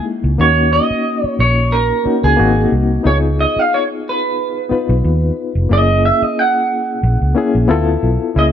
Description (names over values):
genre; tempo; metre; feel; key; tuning
lush 1970s-style soul; 90 BPM; 4/4; swing 54% on 16ths; unclear; A4 = 445 Hz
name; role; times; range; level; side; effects
electric guitar through a small old amp; melody; 0.0-8.5 s; G#4 to F#5; -16 LUFS; right 3 dB; lush chorus
barky reed electric piano; accompaniment; 0.0-8.5 s; G#3 to B4; -18 LUFS; left 5 dB; overdrive, fast tremolo
vintage muted fingered electric bass; bass; 0.2-8.5 s; E#1 to D#2; -15 LUFS; equal; none
room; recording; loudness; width
light reverb, digital ambience; none; -12 LUFS; side -9 dB against mid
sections
0.0-8.5 A section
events
none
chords
0.4 D#m7; 2.4 G#9; 3.0 C#9; 5.7 F#7; 7.7 Dm69